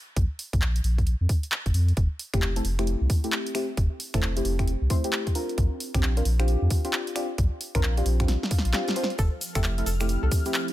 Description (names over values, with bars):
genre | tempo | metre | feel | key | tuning
UK garage, two-step garage | 133 BPM | 4/4 | swing 63% on 16ths | unclear | A4 = 440 Hz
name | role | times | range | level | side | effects
saturated sub bass | bass | 0.2-10.3 s | F1 to F2 | -24 LUFS | equal | tube saturation
electronic kick drum | drums | 0.2-10.4 s | none | -25 LUFS | equal | none
punchy analog drum machine | drums | 0.2-10.7 s | finger snaps, handclaps, hi-hat, snare drum | -31 LUFS | equal | overdrive
deep mellow chord stab | stabs | 2.3-10.7 s | A3 to C5 | -30 LUFS | equal | chorus, dub echo
swell | sound effects | 8.5-9.2 s | none | -39 LUFS | equal | none
string-like resonator pluck | melody | 9.2-10.5 s | A4 | -38 LUFS | equal | chorus, dub echo
airy breathy pad | sustained chords | 9.2-10.7 s | F3 to F6 | -36 LUFS | right 1 dB | chorus, phaser, sidechain pumping
egg shaker | percussion | 9.2-10.7 s | none | -38 LUFS | left 2 dB | none
room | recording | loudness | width
little or no reverb | none | -23 LUFS | side -15 dB against mid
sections
0.0-10.7 A section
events
drum fill 8.3-9.2; swell 8.5-9.2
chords
0.0 Bb5; 2.0 Fmaj7; 5.4 Bb6; 9.2 Fmaj7